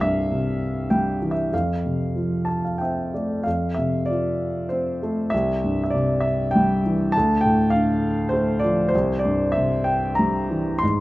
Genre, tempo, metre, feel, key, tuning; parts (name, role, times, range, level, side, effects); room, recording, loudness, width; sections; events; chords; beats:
classical, lyrical solo piano; 90-101 BPM; 3/4; rubato; A4 = 438 Hz
dark grand piano; solo; 0.0-11.0 s; C2 to C6; -20 LUFS; equal
light reverb; close, detailed microphones; -20 LUFS; side -18 dB against mid
0.0-3.5 A section; 3.5-11.0 A section
grand piano fill 2.2-3.5
0.0 C; 1.5 F; 5.3 C; 7.1 Dm; 8.9 C
0.32 0.92 | 1.53 2.16 2.80 | 3.46 4.09 4.71 | 5.33 5.94 6.55 | 7.15 7.74 8.33 | 8.94 9.56 10.19 | 10.82